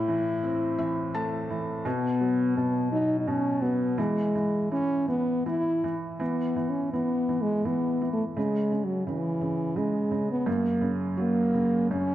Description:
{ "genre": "children's music, lullaby", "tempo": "84 BPM", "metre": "3/4", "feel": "rubato", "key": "unclear", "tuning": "A4 = 443 Hz", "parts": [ { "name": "mellow French horn", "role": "melody", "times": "0.0-12.1 s", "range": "E3 to E4", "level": "-26 LUFS", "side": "equal", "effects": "none" }, { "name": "felt-muted upright piano", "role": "accompaniment", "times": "0.0-12.1 s", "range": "F#2 to A5", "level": "-30 LUFS", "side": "right 1 dB", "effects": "none" } ], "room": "moderate scoring stage reverb, RT60 1.6 s", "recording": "dark, warm production", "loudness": "-24 LUFS", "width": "side -13 dB against mid", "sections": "0.0-6.2 A section; 6.2-12.1 B section", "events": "felt piano fill 0.4-1.9", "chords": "0.0 Am; 1.9 B5; 4.0 N.C.; 10.5 F#", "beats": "0.43 1.15 | 1.85 2.56 3.27 | 3.98 4.71 5.46 | 6.21 6.94 7.65 | 8.37 9.07 9.77 | 10.47 11.18 11.91" }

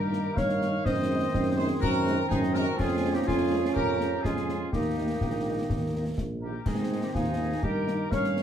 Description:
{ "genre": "military-style march for wind band", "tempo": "124 BPM", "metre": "2/4", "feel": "straight", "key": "Ab major", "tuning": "A4 = 440 Hz", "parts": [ { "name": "clear trumpet section", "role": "melody", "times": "0.0-8.4 s", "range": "G4 to F5", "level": "-35 LUFS", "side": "left 3 dB", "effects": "none" }, { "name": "clear euphonium", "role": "second line", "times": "0.0-8.4 s", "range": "Ab3 to F4", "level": "-34 LUFS", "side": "right 3 dB", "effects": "none" }, { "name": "clear woodwind section", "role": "second line", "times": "0.0-8.4 s", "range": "Eb4 to Db5", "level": "-34 LUFS", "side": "left 1 dB", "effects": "none" }, { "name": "mellow hollow wooden piccolo", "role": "second line", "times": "0.0-8.4 s", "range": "G5 to F6", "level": "-40 LUFS", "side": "right 2 dB", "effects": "none" }, { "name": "mellow trombone section", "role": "sustained chords", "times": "0.0-8.4 s", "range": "Eb3 to Db4", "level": "-34 LUFS", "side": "right 3 dB", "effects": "none" }, { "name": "warm tuba", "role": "bass", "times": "0.0-8.4 s", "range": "Bb1 to Ab2", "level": "-30 LUFS", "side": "right 1 dB", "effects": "none" }, { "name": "mellow French horn section", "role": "accompaniment", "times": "0.1-8.4 s", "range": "Eb3 to Eb4", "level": "-38 LUFS", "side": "left 4 dB", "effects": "none" }, { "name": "concert snare drum, concert bass drum and clash cymbals", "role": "drums", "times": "0.1-8.4 s", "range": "none", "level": "-32 LUFS", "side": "left 1 dB", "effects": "none" } ], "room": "wet studio reverb, RT60 0.6 s", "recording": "heard from further back in the room", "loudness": "-25 LUFS", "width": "side -9 dB against mid", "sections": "0.0-8.4 A section", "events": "none", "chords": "0.0 Eb/G; 0.8 Ab7/Gb; 2.8 Db/F; 4.7 Eb; 6.7 Ab; 7.6 Eb/G", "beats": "0.36 | 0.85 1.33 | 1.82 2.30 | 2.79 3.27 | 3.75 4.24 | 4.72 5.21 | 5.69 6.18 | 6.66 7.14 | 7.63 8.11" }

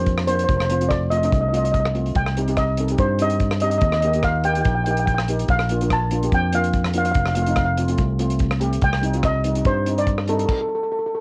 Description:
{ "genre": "calypso", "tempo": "144 BPM", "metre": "4/4", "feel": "swing 54% on 16ths", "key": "unclear", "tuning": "A4 = 445 Hz", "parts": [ { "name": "steel pan", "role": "melody", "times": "0.0-11.2 s", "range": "A4 to A5", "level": "-25 LUFS", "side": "equal", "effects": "cassette tape" }, { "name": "steel pan", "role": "accompaniment", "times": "0.0-10.5 s", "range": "G3 to A4", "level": "-29 LUFS", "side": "equal", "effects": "none" }, { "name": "fingered electric bass", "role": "bass", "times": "0.0-10.4 s", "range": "F1 to G2", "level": "-25 LUFS", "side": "equal", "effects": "none" }, { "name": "warm soul drum kit", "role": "drums", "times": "0.1-10.6 s", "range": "crash cymbal, hi-hat, kick drum, rim click", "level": "-27 LUFS", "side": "equal", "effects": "cassette tape" } ], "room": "light reverb", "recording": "home recording on cassette", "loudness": "-20 LUFS", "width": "mono", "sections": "0.0-11.2 A section", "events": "stop 10.5-11.2", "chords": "0.5 F; 2.2 Cm; 3.8 Eb; 5.5 Bb; 7.2 Fadd9; 8.8 Cm; 10.5 N.C.", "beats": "0.08 | 0.49 0.91 1.33 1.74 | 2.16 2.58 3.00 3.41 | 3.83 4.25 4.66 5.08 | 5.50 5.91 6.33 6.74 | 7.16 7.58 7.99 8.41 | 8.83 9.24 9.66 10.07 | 10.49 10.91" }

